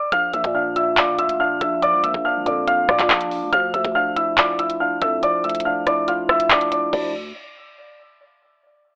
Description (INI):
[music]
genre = hip hop, drill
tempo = 141 BPM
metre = 4/4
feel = half-time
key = D minor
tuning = A4 = 443 Hz
[part]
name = dark concert grand piano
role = melody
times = 0.0-7.1 s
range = D5 to F6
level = -22 LUFS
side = equal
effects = low-pass filter
[part]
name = mellow tine electric piano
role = accompaniment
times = 0.1-7.1 s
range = F3 to F5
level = -28 LUFS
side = equal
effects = low-pass filter
[part]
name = growling 808-style bass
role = bass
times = 0.1-7.3 s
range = Bb1 to Bb2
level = -31 LUFS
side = equal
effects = none
[part]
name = drill drum kit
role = drums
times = 0.1-7.0 s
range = crash cymbal, handclaps, hi-hat, kick drum, rim click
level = -23 LUFS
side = equal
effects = none
[sound]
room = moderate digital room reverb, RT60 1.1 s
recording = telephone sound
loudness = -20 LUFS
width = mono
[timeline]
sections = 0.0-6.9 A section; 6.9-8.6 B section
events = kick muted 5.2-6.9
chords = 0.1 Bb; 3.5 Dmadd9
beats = | 0.12 0.55 0.97 1.40 | 1.82 2.25 2.67 3.10 | 3.53 3.95 4.38 4.80 | 5.23 5.65 6.08 6.50 | 6.93